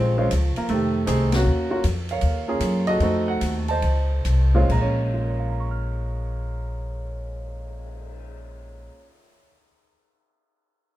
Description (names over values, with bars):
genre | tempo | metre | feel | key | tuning
jazz piano trio | 134-158 BPM | 4/4 | swing 67% on 8ths | Bb minor | A4 = 440 Hz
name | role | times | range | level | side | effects
warm grand piano | melody | 0.0-9.9 s | Bb2 to F6 | -25 LUFS | right 1 dB | none
upright bass | bass | 0.0-8.9 s | Bb1 to Gb2 | -23 LUFS | equal | none
open jazz drum kit | drums | 0.3-8.2 s | crash cymbal, cymbal swell, hi-hat, kick drum, ride cymbal, snare drum | -34 LUFS | left 1 dB | none
room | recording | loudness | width
light reverb | minimal, uncompressed stereo recording | -20 LUFS | side -14 dB against mid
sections
0.0-1.5 A section; 1.5-4.7 B section; 4.7-8.3 C section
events
band accent 1.3; slowing down 1.5-4.7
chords
0.0 Bbm9; 0.7 F7#9; 1.5 Ebm9; 3.0 F7b9; 4.7 Bbm7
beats
0.31 0.69 1.07 | 1.45 1.83 2.22 2.61 | 3.01 3.41 3.83 4.25 | 4.69 5.14 5.59 6.04 | 6.48 6.93 7.38 7.82